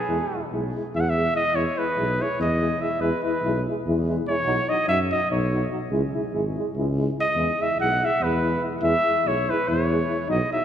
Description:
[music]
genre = balkan folk, Balkan brass band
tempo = 288 BPM (eighths)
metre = 7/8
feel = straight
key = E major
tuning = A4 = 440 Hz
[part]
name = warm trumpet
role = melody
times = 0.0-10.6 s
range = G#4 to F#5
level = -24 LUFS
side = equal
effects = none
[part]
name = warm euphonium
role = accompaniment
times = 0.1-10.6 s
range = D#4 to E4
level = -31 LUFS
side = left 5 dB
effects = none
[part]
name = warm euphonium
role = accompaniment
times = 0.1-10.6 s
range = F#3 to G#3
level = -31 LUFS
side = right 4 dB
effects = none
[part]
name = mellow tuba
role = bass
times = 0.1-10.4 s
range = G#1 to F#2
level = -26 LUFS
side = equal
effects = none
[sound]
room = wet church reverb, RT60 3.4 s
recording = recorded in a church or concert hall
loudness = -21 LUFS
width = side -9 dB against mid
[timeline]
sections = 0.0-10.6 A section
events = trumpet solo 0.0-10.6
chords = 0.1 E; 4.5 B; 5.9 C#m; 7.4 E

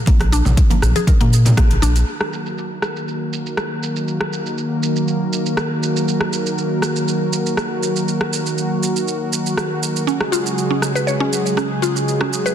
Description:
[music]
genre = afro house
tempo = 120 BPM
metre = 4/4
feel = swing 53% on 16ths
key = Eb minor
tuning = A4 = 440 Hz
[part]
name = mallet-like synth pluck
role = arpeggios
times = 0.1-1.9, 10.1-12.5 s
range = Bb3 to Db5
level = -22 LUFS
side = left 1 dB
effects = chorus, sidechain pumping, dub echo
[part]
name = round analog bass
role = bass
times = 0.1-2.0 s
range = Bb1 to Bb2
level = -15 LUFS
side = equal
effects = sidechain pumping
[part]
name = deep house drum kit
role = drums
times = 0.1-12.5 s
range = hi-hat, rim click, shaker, toms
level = -24 LUFS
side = right 2 dB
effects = overdrive, low-pass filter on perc, studio reverb, low-pass filter on hats, low-pass filter on snare, low-pass filter on toms
[part]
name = electronic kick drum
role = drums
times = 0.1-1.7 s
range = none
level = -15 LUFS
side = equal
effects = overdrive, studio reverb
[part]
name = congas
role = percussion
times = 0.1-1.8 s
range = none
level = -24 LUFS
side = right 2 dB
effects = none
[part]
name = warm analog pad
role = sustained chords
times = 2.1-12.5 s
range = Db3 to Bb4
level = -20 LUFS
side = equal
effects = chorus, sidechain pumping
[sound]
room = light reverb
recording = dense, heavily limited modern master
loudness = -16 LUFS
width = side -9 dB against mid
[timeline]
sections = 0.0-2.1 A section; 2.1-12.5 B section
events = band accent 1.6; filter sweep on drum 2.1-12.5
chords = 0.0 Bb; 2.1 Ebm; 10.1 Dbsus4

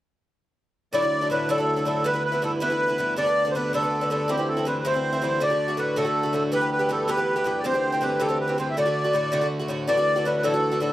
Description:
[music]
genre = celtic folk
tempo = 107 BPM (dotted quarters)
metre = 6/8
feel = straight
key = D mixolydian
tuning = A4 = 440 Hz
[part]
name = accordion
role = melody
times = 0.9-10.9 s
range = G4 to E5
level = -24 LUFS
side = equal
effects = light tremolo tuning, slapback echo
[part]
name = Irish bouzouki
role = accompaniment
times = 0.9-10.9 s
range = G2 to G4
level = -26 LUFS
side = equal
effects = slapback echo
[part]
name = hand-pumped harmonium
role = drone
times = 0.9-10.9 s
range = D2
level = -30 LUFS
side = left 1 dB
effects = stereo widening
[sound]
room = light reverb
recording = recorded outdoors, with no room sound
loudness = -21 LUFS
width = side -14 dB against mid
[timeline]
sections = 0.9-9.9 A section; 9.9-10.9 A section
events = none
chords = 0.9 Dadd9; 2.1 Em; 3.2 G; 4.3 C; 5.4 D; 6.5 Em; 7.6 C; 8.8 D; 9.9 Dadd9

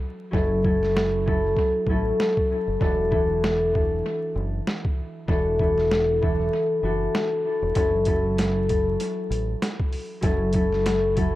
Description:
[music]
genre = hip hop, boom-bap hip-hop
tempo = 97 BPM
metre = 4/4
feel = swing 56% on 16ths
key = F# minor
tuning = A4 = 440 Hz
[part]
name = concert harp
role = accompaniment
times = 0.0-11.4 s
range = E3 to A4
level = -23 LUFS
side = left 1 dB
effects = cassette tape, high-pass filter, low-pass filter, tape echo
[part]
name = deep dub fingered electric bass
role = bass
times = 0.3-11.4 s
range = E1 to A1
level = -28 LUFS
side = equal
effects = none
[part]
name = trip hop sampler-style drum kit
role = drums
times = 0.3-11.3 s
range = hi-hat, kick drum, snare drum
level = -26 LUFS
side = equal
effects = tape echo
[sound]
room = wet spring reverb, RT60 2.6 s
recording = echo-heavy mix, vinyl crackle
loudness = -21 LUFS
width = side -16 dB against mid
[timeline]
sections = 0.0-11.4 A section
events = break 0.0-7.8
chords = 0.0 F#m7; 2.8 E9sus4; 7.8 F#m7

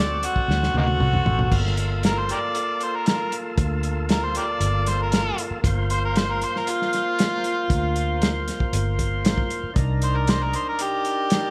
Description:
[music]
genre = straight-eighth soul blues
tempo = 116 BPM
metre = 4/4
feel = straight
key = G minor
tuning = A4 = 440 Hz
[part]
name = overdriven harmonica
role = melody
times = 0.0-11.5 s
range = Bb3 to D5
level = -27 LUFS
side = equal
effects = none
[part]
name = overdriven tonewheel organ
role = accompaniment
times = 0.0-11.5 s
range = Bb3 to C5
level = -32 LUFS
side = equal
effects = slow rotary speaker
[part]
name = vintage muted fingered electric bass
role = bass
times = 0.0-10.6 s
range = G1 to D2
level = -27 LUFS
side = equal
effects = none
[part]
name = warm soul drum kit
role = drums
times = 0.2-11.4 s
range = crash cymbal, hi-hat, kick drum, snare drum, toms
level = -26 LUFS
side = equal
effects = none
[sound]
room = moderate large studio reverb, RT60 1.4 s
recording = band playing live in one room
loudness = -23 LUFS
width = mono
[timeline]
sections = 0.0-1.5 A section; 1.5-11.5 B section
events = drum fill 0.5-1.5; harmonica solo 1.5-11.5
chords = 0.0 D7; 1.5 Gm7; 9.8 Cm7

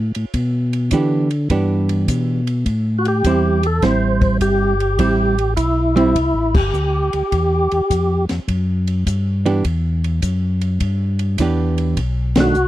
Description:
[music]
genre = soul jazz organ trio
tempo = 103 BPM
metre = 4/4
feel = swing 67% on 8ths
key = unclear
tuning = A4 = 439 Hz
[part]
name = mellow tonewheel organ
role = bass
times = 0.0-12.7 s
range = G1 to D3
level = -18 LUFS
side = left 1 dB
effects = overdrive, chorus vibrato, slow rotary speaker
[part]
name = compact cocktail drum kit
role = drums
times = 0.1-12.7 s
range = crash cymbal, hi-hat, kick drum, ride cymbal, snare drum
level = -21 LUFS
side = left 1 dB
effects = none
[part]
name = hollow-body jazz guitar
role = accompaniment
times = 0.9-12.5 s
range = D#3 to G4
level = -18 LUFS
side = right 4 dB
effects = none
[part]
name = percussive tonewheel organ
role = melody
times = 3.0-8.3, 12.4-12.7 s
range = E4 to C5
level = -18 LUFS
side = equal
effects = slow rotary speaker, overdrive, chorus vibrato
[sound]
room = little or no reverb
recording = dry, close 1970s-style studio recording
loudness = -15 LUFS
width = side -14 dB against mid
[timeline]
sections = 0.0-12.7 A section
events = band accent 6.5, 12.3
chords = 0.0 Em7; 2.7 Am7; 9.6 Em7; 12.0 B7#9

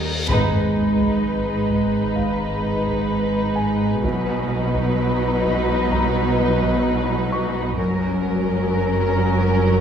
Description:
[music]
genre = cinematic, suspense film score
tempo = 64 BPM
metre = 4/4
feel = straight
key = G# dorian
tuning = A4 = 441 Hz
[part]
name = muted studio violin section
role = melody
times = 0.0-9.8 s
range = A#4 to B4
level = -25 LUFS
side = left 2 dB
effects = none
[part]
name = muted studio viola section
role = accompaniment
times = 0.0-9.8 s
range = F#3 to G#3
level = -25 LUFS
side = left 1 dB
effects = none
[part]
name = muted studio cello section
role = bass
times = 0.0-9.8 s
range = F#2 to B2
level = -24 LUFS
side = right 3 dB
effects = none
[part]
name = deep rumbling drone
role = drone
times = 0.0-9.8 s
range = F#1 to D#2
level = -32 LUFS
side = left 1 dB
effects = built-in reverb
[part]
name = reverse cymbal and sub drop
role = sound effects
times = 0.0-4.0 s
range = none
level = -30 LUFS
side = equal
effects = none
[part]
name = dark concert grand piano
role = texture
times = 0.0-9.8 s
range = E#5 to C#6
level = -32 LUFS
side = left 2 dB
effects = none
[part]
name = muted studio violin section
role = second line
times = 0.3-9.8 s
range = C#4 to D#4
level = -27 LUFS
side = left 2 dB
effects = none
[part]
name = muted studio double bass section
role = bass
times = 0.3-9.8 s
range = F#1 to B1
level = -26 LUFS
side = right 2 dB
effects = none
[part]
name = taiko ensemble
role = drums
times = 0.3-9.6 s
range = none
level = -31 LUFS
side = equal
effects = none
[sound]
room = moderate scoring stage reverb, RT60 1.9 s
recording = small room ambience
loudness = -18 LUFS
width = side -8 dB against mid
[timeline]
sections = 0.3-9.8 A section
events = reverse cymbal 0.0; band accent 0.3-1.2; impact 0.3-4.0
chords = 0.3 G#m; 4.0 B; 7.8 F#

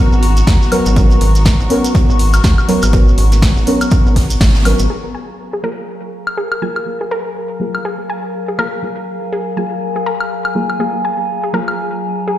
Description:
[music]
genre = deep house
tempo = 122 BPM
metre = 4/4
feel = swing 58% on 16ths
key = unclear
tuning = A4 = 440 Hz
[part]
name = warbly tape-like pad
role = sustained chords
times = 0.0-12.4 s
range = B3 to C#6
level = -25 LUFS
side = left 2 dB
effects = chorus, built-in reverb, sidechain pumping
[part]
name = deep mellow chord stab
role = stabs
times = 0.0-12.4 s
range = F#3 to A#4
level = -20 LUFS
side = equal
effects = chorus, sidechain pumping, tape echo
[part]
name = muted studio violin section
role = texture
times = 0.0-4.9 s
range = F#4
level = -30 LUFS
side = left 1 dB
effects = sidechain pumping
[part]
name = rubbery square bass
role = bass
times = 0.1-4.9 s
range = G#1 to D#2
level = -13 LUFS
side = equal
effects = tube saturation, sidechain pumping
[part]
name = shekere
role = percussion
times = 0.1-4.9 s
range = none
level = -28 LUFS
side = right 4 dB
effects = none
[part]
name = open jazz drum kit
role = drums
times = 0.2-4.9 s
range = hi-hat, snare drum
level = -31 LUFS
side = right 2 dB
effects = sidechain pumping on hats, high-pass filter on hats, high-pass filter on snare, high-pass filter on room
[part]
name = punchy analog drum machine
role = drums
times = 0.2-11.8 s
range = hi-hat, snare drum, woodblock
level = -22 LUFS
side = left 1 dB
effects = overdrive
[part]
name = electronic kick drum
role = drums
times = 0.5-4.5 s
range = none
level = -12 LUFS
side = equal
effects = overdrive
[part]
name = analog pluck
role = arpeggios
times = 4.9-12.4 s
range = G#4 to G#5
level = -24 LUFS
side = left 1 dB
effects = chorus, sidechain pumping, tape echo
[part]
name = warbly tape-like pad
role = texture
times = 5.5-12.4 s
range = F#3 to G#5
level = -22 LUFS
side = left 1 dB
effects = chorus, built-in reverb, sidechain pumping
[sound]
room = light reverb, studio reverb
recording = played on a big sound system in a bare room, stone room reverb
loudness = -12 LUFS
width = side -13 dB against mid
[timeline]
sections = 0.0-4.9 A section; 4.9-12.4 B section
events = band accent 4.4; filter sweep on synth stab 4.9-12.4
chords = 0.0 G#m11; 4.9 F#maj9

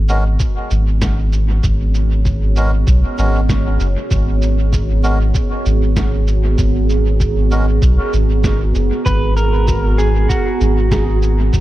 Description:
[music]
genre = ambient dub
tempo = 97 BPM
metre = 4/4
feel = swing 60% on 16ths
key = G# minor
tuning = A4 = 442 Hz
[part]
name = deep dark ambient pad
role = sustained chords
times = 0.0-11.6 s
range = B3 to A#5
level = -22 LUFS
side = right 3 dB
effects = chorus, built-in reverb
[part]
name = soft dub sub bass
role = bass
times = 0.0-11.6 s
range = F#1 to B1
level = -14 LUFS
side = equal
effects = none
[part]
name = melodica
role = stabs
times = 0.1-7.7 s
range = G#3 to A#4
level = -26 LUFS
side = equal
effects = dub echo
[part]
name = electronic cabasa and snare drum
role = drums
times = 0.1-11.6 s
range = none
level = -27 LUFS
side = right 1 dB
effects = dub echo
[part]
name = electronic kick drum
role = drums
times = 0.4-11.6 s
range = none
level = -19 LUFS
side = equal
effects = none
[part]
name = electric slide guitar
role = melody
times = 9.1-11.2 s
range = F#4 to B4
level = -21 LUFS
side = right 1 dB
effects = dub echo
[part]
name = handpan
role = arpeggios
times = 9.7-11.6 s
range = F#4 to G#4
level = -29 LUFS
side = left 1 dB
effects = dub echo
[sound]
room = little or no reverb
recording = echo-heavy mix, lossy compression artefacts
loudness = -13 LUFS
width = side -15 dB against mid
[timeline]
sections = 0.0-11.6 A section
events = none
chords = 0.0 G#m11

